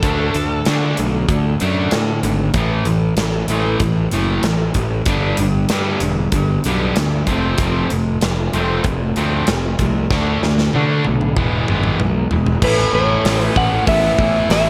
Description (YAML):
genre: classic rock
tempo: 95 BPM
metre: 4/4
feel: straight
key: A major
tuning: A4 = 440 Hz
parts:
  - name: smooth overdriven lead guitar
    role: second line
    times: 0.0-0.6 s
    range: A4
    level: -28 LUFS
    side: equal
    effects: none
  - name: cranked stack guitar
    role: riff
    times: 0.0-14.7 s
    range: G2 to E4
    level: -24 LUFS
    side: equal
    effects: overdrive
  - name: distorted electric guitar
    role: riff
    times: 0.0-14.7 s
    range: E2 to F#4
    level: -25 LUFS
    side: equal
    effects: distortion
  - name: fuzz picked electric bass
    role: bass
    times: 0.0-14.7 s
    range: E1 to D3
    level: -22 LUFS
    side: equal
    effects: overdrive
  - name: big rock drum kit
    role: drums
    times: 0.0-14.7 s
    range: crash cymbal, hi-hat, kick drum, snare drum, toms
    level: -24 LUFS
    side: equal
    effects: none
  - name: electric slide guitar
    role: melody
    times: 12.6-14.7 s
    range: B4 to F#5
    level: -20 LUFS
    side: equal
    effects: none
  - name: bright upright piano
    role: accompaniment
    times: 12.6-14.7 s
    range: B3 to A4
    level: -31 LUFS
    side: equal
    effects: none
room: light reverb, small room reverb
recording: none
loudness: -17 LUFS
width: mono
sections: 0.0-12.6 A section; 12.6-14.7 B section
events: drum fill 10.1-12.6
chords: 0.0 D; 2.6 A5; 5.1 G; 7.3 F; 10.1 D; 11.4 E; 12.6 Aadd9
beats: | 0.04 0.67 1.29 1.93 | 2.56 3.18 3.81 4.44 | 5.07 5.70 6.33 6.96 | 7.59 8.22 8.85 9.48 | 10.11 10.74 11.37 12.00 | 12.63 13.25 13.88 14.51